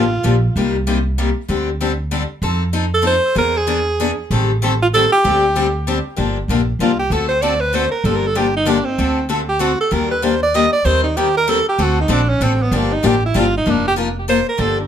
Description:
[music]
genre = acoustic string swing (jazz manouche)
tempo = 192 BPM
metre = 3/4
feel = swing 59% on 8ths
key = G minor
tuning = A4 = 441 Hz
[part]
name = clear alto saxophone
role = melody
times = 0.0-0.4, 2.9-14.9 s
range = Bb3 to Eb5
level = -17 LUFS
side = right 2 dB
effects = tape echo
[part]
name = picked steel-string acoustic guitar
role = accompaniment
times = 0.0-14.8 s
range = C3 to Bb4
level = -19 LUFS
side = left 5 dB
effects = none
[part]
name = upright bass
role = bass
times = 0.0-14.8 s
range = F1 to F2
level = -20 LUFS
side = right 1 dB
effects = none
[sound]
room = moderate small room reverb, RT60 0.5 s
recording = none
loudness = -14 LUFS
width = side -9 dB against mid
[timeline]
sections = 0.0-6.2 A section; 6.2-13.7 B section; 13.7-14.9 B section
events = alto saxophone solo 6.2-14.9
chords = 0.0 Gm7; 0.6 Cm7; 1.5 D7sus4; 2.4 F7; 3.4 E7; 4.3 Am7b5; 5.2 D7sus4; 6.2 Gm7; 7.1 D7; 8.0 Gm7; 9.0 D7; 9.9 Ebmaj7; 10.9 Cm7/Eb; 11.8 D7; 12.7 Gm7; 13.7 F7sus4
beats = 0.24 | 0.55 0.86 1.18 | 1.49 1.80 2.11 | 2.42 2.74 3.05 | 3.36 3.67 3.99 | 4.30 4.61 4.92 | 5.24 5.55 5.86 | 6.17 6.48 6.80 | 7.11 7.42 7.73 | 8.04 8.36 8.67 | 8.98 9.29 9.61 | 9.92 10.23 10.54 | 10.85 11.16 11.47 | 11.79 12.10 12.41 | 12.72 13.03 13.34 | 13.65 13.96 14.28 | 14.59

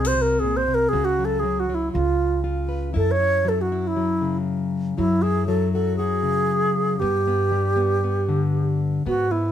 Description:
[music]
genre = acoustic folk duo or small band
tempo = 118 BPM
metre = 4/4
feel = straight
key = F# minor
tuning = A4 = 440 Hz
[part]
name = alto flute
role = melody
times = 0.0-9.5 s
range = E4 to C#5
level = -22 LUFS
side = right 2 dB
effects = none
[part]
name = fingerpicked plugged-in steel-string acoustic guitar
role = accompaniment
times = 0.0-9.5 s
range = F#2 to B4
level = -25 LUFS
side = left 4 dB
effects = none
[part]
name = upright bass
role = bass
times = 0.0-9.5 s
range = B#1 to G#2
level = -27 LUFS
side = equal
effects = none
[sound]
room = light reverb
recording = minimal, uncompressed stereo recording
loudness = -20 LUFS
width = side -10 dB against mid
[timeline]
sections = 0.0-5.0 A section; 5.0-9.5 B section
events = alto flute solo 0.0-5.0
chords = 0.0 G#7/B#; 0.9 C#sus4; 1.9 C#7; 3.0 F#5; 7.0 G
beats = 0.43 | 0.93 1.44 1.95 2.45 | 2.96 3.47 3.97 4.48 | 4.99 5.50 6.00 6.51 | 7.02 7.53 8.03 8.54 | 9.05

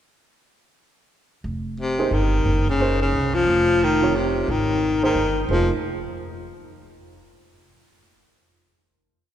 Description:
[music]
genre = jazz, small-group swing and bop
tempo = 178 BPM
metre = 3/4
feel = swing 62% on 8ths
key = F minor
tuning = A4 = 440 Hz
[part]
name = upright bass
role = bass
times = 1.4-5.7 s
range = F1 to C2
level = -24 LUFS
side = right 1 dB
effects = none
[part]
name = clear baritone saxophone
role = melody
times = 1.8-5.7 s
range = C3 to F3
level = -21 LUFS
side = left 2 dB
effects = none
[part]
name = warm upright piano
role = accompaniment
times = 2.0-5.7 s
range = C3 to Db5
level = -27 LUFS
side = right 4 dB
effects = none
[sound]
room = wet church reverb, RT60 2.9 s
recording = recorded in a church or concert hall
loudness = -18 LUFS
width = side -10 dB against mid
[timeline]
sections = 1.4-5.5 A section; 5.5-6.5 final chord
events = none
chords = 1.4 Fm7; 2.5 Gb; 3.5 Fm7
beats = | 1.44 1.78 2.12 | 2.46 2.79 3.13 | 3.47 3.81 4.14 | 4.48 4.82 5.16 | 5.49

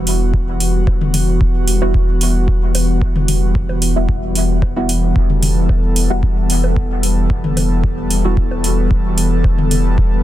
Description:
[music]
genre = dub techno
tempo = 112 BPM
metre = 4/4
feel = straight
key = E minor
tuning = A4 = 440 Hz
[part]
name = airy breathy pad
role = sustained chords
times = 0.0-10.2 s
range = E3 to A4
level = -20 LUFS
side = equal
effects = chorus, sidechain pumping
[part]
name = warm sub bass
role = bass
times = 0.0-10.2 s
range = E1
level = -17 LUFS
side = equal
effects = sidechain pumping
[part]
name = electronic hi-hat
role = drums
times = 0.1-9.8 s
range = none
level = -22 LUFS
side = right 2 dB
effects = overdrive
[part]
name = electronic kick drum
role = drums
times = 0.3-10.1 s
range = none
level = -17 LUFS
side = equal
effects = overdrive
[part]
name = electronic bongos and toms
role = percussion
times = 0.9-9.8 s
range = none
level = -24 LUFS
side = left 4 dB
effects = sidechain pumping on perc, sidechain pumping on toms, dub echo
[part]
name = deep mellow chord stab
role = stabs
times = 1.8-8.5 s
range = G3 to F#4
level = -25 LUFS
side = right 1 dB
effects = chorus, phaser, sidechain pumping, dub echo
[sound]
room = little or no reverb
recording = dense, heavily limited modern master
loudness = -13 LUFS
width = side -13 dB against mid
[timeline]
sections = 0.0-10.2 A section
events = none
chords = 0.0 Emadd9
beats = 0.34 | 0.87 1.41 1.94 2.48 | 3.02 3.55 4.09 4.62 | 5.16 5.69 6.23 6.76 | 7.30 7.84 8.37 8.91 | 9.44 9.98

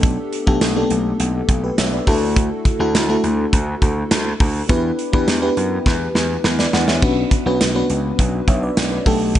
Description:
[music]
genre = 1980s-style pop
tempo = 103 BPM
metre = 4/4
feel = straight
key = B minor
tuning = A4 = 441 Hz
[part]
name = FM electric piano with soft pad layer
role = accompaniment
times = 0.0-9.4 s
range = A3 to F#5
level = -20 LUFS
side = left 1 dB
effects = chorus
[part]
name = gritty slap bass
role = bass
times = 0.0-9.4 s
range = B1 to F#2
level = -21 LUFS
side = equal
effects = overdrive
[part]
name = modern studio drum kit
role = drums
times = 0.0-9.4 s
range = crash cymbal, hi-hat, kick drum, snare drum, tambourine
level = -18 LUFS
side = right 1 dB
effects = gated reverb
[sound]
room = light reverb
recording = nothing above 10.3 kHz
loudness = -15 LUFS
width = side -12 dB against mid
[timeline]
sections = 0.0-9.4 A section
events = drum fill 5.9-7.0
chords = 0.0 Gadd9/B; 2.1 Dadd9; 4.7 Em7; 7.0 Bmadd9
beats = | 0.03 0.62 1.20 1.78 | 2.36 2.95 3.53 4.11 | 4.69 5.28 5.86 6.44 | 7.02 7.61 8.19 8.77 | 9.35

